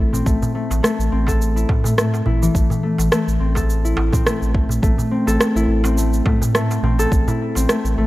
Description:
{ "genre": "organic downtempo", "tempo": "105 BPM", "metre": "4/4", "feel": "swing 56% on 16ths", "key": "A minor", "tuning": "A4 = 439 Hz", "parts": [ { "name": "concert harp", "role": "arpeggios", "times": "0.0-8.1 s", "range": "E3 to A4", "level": "-20 LUFS", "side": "left 2 dB", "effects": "analog delay" }, { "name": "warm sub bass", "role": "bass", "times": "0.0-8.1 s", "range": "A1 to A2", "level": "-20 LUFS", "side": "equal", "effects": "tube saturation" }, { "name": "electronic cabasa and rim click", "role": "drums", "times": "0.1-8.0 s", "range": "none", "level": "-23 LUFS", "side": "right 1 dB", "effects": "overdrive" }, { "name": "darbuka", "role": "percussion", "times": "0.1-7.7 s", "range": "none", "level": "-25 LUFS", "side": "right 2 dB", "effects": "none" }, { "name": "electronic kick drum", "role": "drums", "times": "0.3-7.2 s", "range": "none", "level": "-19 LUFS", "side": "equal", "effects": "none" } ], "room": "small room ambience", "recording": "dry, gritty hardware recording", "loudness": "-16 LUFS", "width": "side -17 dB against mid", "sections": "0.0-8.1 A section", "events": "none", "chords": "0.0 Am", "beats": "| 0.26 0.83 1.41 1.98 | 2.55 3.12 3.69 4.26 | 4.83 5.41 5.98 6.55 | 7.12 7.69" }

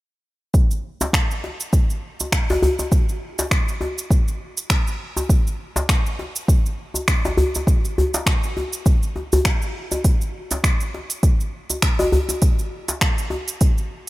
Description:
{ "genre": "downtempo", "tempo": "101 BPM", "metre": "4/4", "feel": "swing 56% on 16ths", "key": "none", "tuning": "none", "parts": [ { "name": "electronic kick drum", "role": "drums", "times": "0.5-13.7 s", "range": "none", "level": "-18 LUFS", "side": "equal", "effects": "none" }, { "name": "organic electronic drum kit", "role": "drums", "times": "0.5-13.9 s", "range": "finger snaps, hi-hat, shaker", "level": "-24 LUFS", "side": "right 1 dB", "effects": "none" }, { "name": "djembe", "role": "percussion", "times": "1.0-13.4 s", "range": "none", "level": "-22 LUFS", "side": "left 1 dB", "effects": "none" } ], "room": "little or no reverb", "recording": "none", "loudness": "-18 LUFS", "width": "side -18 dB against mid", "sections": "0.5-14.1 A section", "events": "none", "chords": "none", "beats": "| 0.54 1.14 1.73 2.33 | 2.92 3.51 4.11 4.70 | 5.30 5.89 6.48 7.08 | 7.67 8.27 8.86 9.46 | 10.05 10.64 11.24 11.83 | 12.43 13.02 13.61" }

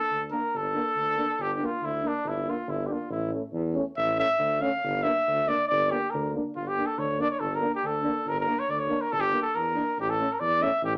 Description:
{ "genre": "balkan folk, Balkan brass band", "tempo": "140 BPM", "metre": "2/4", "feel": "straight", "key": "G dorian sharp4", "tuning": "A4 = 441 Hz", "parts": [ { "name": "mellow trumpet", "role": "melody", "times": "0.0-10.9 s", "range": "D4 to F5", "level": "-28 LUFS", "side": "equal", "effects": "none" }, { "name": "warm tuba", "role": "bass", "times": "0.1-11.0 s", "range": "G1 to E2", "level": "-36 LUFS", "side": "equal", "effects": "none" }, { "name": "mellow euphonium", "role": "accompaniment", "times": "0.3-10.7 s", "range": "A3 to Bb3", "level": "-40 LUFS", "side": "equal", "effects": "none" }, { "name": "warm euphonium", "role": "accompaniment", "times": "0.3-10.7 s", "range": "C#4 to D4", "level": "-36 LUFS", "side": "equal", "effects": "none" } ], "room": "wet small room reverb, RT60 0.5 s", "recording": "none", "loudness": "-27 LUFS", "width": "mono", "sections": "0.0-6.5 A section; 6.5-11.0 B section", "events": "trumpet solo 0.0-6.5", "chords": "0.0 Gm; 3.1 A; 4.8 Gm; 10.0 A", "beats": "0.10 | 0.53 0.96 | 1.39 1.82 | 2.25 2.68 | 3.11 3.54 | 3.97 4.40 | 4.83 5.26 | 5.69 6.12 | 6.54 6.97 | 7.40 7.83 | 8.26 8.69 | 9.11 9.54 | 9.97 10.40 | 10.82" }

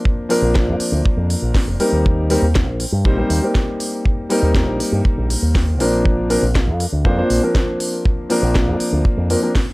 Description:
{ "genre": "nu-disco, nu disco", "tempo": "120 BPM", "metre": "4/4", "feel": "straight", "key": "unclear", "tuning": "A4 = 441 Hz", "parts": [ { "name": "warm concert grand piano", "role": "accompaniment", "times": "0.0-9.5 s", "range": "F3 to C5", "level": "-19 LUFS", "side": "equal", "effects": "tape echo" }, { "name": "kick drum", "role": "drums", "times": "0.1-9.7 s", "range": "none", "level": "-18 LUFS", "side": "equal", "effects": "none" }, { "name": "house drum kit", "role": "drums", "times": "0.3-9.7 s", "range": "hi-hat, snare drum", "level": "-25 LUFS", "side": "equal", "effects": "none" }, { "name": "fingered electric bass with an envelope filter", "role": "bass", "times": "0.4-9.3 s", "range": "F1 to G2", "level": "-18 LUFS", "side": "equal", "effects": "tube saturation" } ], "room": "studio ambience", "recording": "dry, gritty hardware recording, transformer saturation", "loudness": "-15 LUFS", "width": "side -22 dB against mid", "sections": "0.0-9.7 A section", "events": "none", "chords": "0.0 Bbadd9", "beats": "| 0.05 0.55 1.05 1.55 | 2.05 2.55 3.05 3.55 | 4.05 4.55 5.05 5.55 | 6.05 6.55 7.05 7.55 | 8.05 8.55 9.05 9.55" }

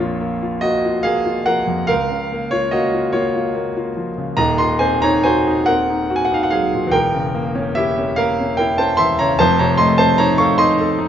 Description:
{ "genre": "classical, romantic nocturne for solo piano", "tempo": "48 BPM (dotted quarters)", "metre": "6/8", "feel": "rubato", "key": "Bb minor", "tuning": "A4 = 440 Hz", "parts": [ { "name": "warm grand piano", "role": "solo", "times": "0.0-11.1 s", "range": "Eb1 to Db6", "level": "-15 LUFS", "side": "equal", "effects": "none" } ], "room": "moderate large studio reverb, RT60 1.3 s", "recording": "nothing above 7.6 kHz", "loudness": "-15 LUFS", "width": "side -9 dB against mid", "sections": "0.0-11.1 A section", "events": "none", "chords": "0.0 Bbm; 1.9 Bbm/Db; 4.4 Cm7b5/Eb; 6.9 Edim7; 9.4 F7", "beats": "0.64 | 1.89 3.15 | 4.39 5.68 | 6.93 8.18 | 9.38 10.59" }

